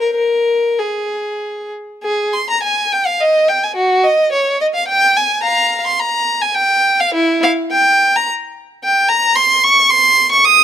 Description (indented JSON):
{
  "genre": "classical, baroque-style suite movement for unaccompanied violin",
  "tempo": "88-112 BPM",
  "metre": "3/4",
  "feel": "rubato",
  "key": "Ab major",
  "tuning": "A4 = 440 Hz",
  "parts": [
    { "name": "rich violin", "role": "solo", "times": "0.0-10.6 s", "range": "Fb4 to Eb6", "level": "-12 LUFS", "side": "equal", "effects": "none" }
  ],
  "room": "light reverb",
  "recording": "close, detailed microphones",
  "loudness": "-12 LUFS",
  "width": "side -10 dB against mid",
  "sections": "0.0-2.0 A section; 2.0-10.6 B section",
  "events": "none",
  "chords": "none",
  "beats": "| 0.12 0.75 1.37 | 2.03 2.63 3.20 | 3.77 4.33 4.89 | 5.45 6.00 6.56 | 7.15 7.72 8.28 | 8.83 9.37 9.90 | 10.44"
}